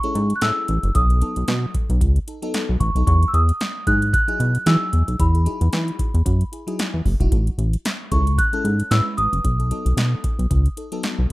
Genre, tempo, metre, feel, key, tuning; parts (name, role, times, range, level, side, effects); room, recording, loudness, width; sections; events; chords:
early-eighties boogie funk; 113 BPM; 4/4; swing 56% on 16ths; E major; A4 = 440 Hz
large celesta; melody; 0.0-11.3 s; B5 to F#6; -24 LUFS; right 1 dB; slapback echo
FM electric piano with soft pad layer; accompaniment; 0.0-11.2 s; F#3 to B4; -30 LUFS; left 2 dB; chorus, phaser
electro analog drum machine; drums; 0.0-11.2 s; hi-hat, kick drum, snare drum; -24 LUFS; equal
chorused synth bass; bass; 0.1-11.3 s; E1 to E3; -18 LUFS; equal
digital ambience; rough home demo mix; -17 LUFS; side -19 dB against mid
0.0-11.3 A section
0.0 Amaj7; 0.9 B7; 3.1 Emaj9; 7.3 Amaj7; 9.4 B7